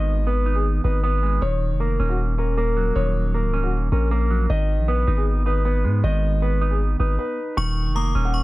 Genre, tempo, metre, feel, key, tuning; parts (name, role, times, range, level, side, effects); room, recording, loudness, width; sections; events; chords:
hip hop; 156 BPM; 4/4; half-time; Eb minor; A4 = 437 Hz
dark grand piano; melody; 0.0-8.3 s; Gb4 to Db6; -28 LUFS; left 2 dB; low-pass filter, tape echo
electric guitar with an envelope filter; accompaniment; 0.0-8.4 s; Eb3 to Eb4; -26 LUFS; right 5 dB; low-pass filter
long sustained 808-style bass; bass; 0.0-8.4 s; Db1 to Ab2; -21 LUFS; equal
metallic FM bell; second line; 7.6-8.4 s; Db6 to Eb6; -29 LUFS; left 4 dB; chorus, tape echo
digital ambience; -19 LUFS; side -18 dB against mid
0.0-7.6 A section
stop 7.2-7.6
0.0 Abm; 1.4 Ebm7; 4.5 Abm; 7.6 Eb7(no3)